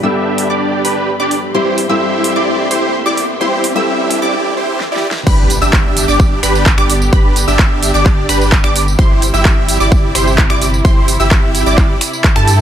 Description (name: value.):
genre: EDM, festival progressive house.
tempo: 129 BPM.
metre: 4/4.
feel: straight.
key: G major.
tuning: A4 = 440 Hz.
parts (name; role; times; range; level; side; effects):
fingerpicked steel-string acoustic guitar; accompaniment; 0.0-4.3 s; G2 to A4; -20 LUFS; left 3 dB; sidechain pumping, dub echo.
warm studio string section; sustained chords; 0.0-12.6 s; C3 to C6; -23 LUFS; equal; sidechain pumping, low-pass filter.
wide unison pluck; arpeggios; 0.0-12.6 s; A5 to E6; -20 LUFS; right 1 dB; ensemble chorus, sidechain pumping, dub echo.
dense compressed supersaw; riff; 0.0-12.6 s; D4 to E5; -17 LUFS; right 2 dB; sidechain pumping, low-pass filter, dub echo.
saturated sub bass; bass; 0.0-12.6 s; G1 to G2; -17 LUFS; equal; tube saturation, sidechain pumping, high-pass filter.
riser and impact; sound effects; 0.9-7.1 s; none; -27 LUFS; equal; none.
big-room dance drum kit; drums; 0.4-12.6 s; crash cymbal, finger snaps, handclaps, hi-hat, snare drum, tambourine; -18 LUFS; right 1 dB; overdrive.
electronic kick drum; drums; 5.3-12.3 s; none; -11 LUFS; equal; overdrive.
room: light reverb.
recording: high-pass filter.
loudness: -10 LUFS.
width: side -10 dB against mid.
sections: 0.0-5.3 A section; 5.3-12.6 B section.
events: build-up 0.0-5.3; filter sweep on string section 0.0-5.3; riser 0.9-4.3; break 4.3-5.3; drum fill 4.8-5.3; drop 5.3-12.6; impact 5.3-7.1.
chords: 0.0 G; 1.5 C/G; 5.3 G; 9.0 C/G.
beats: 0.15 0.62 1.08 | 1.55 2.01 2.48 2.94 | 3.41 3.87 4.34 4.80 | 5.27 5.73 6.20 6.66 | 7.13 7.59 8.06 8.52 | 8.99 9.45 9.92 10.38 | 10.85 11.31 11.78 12.24.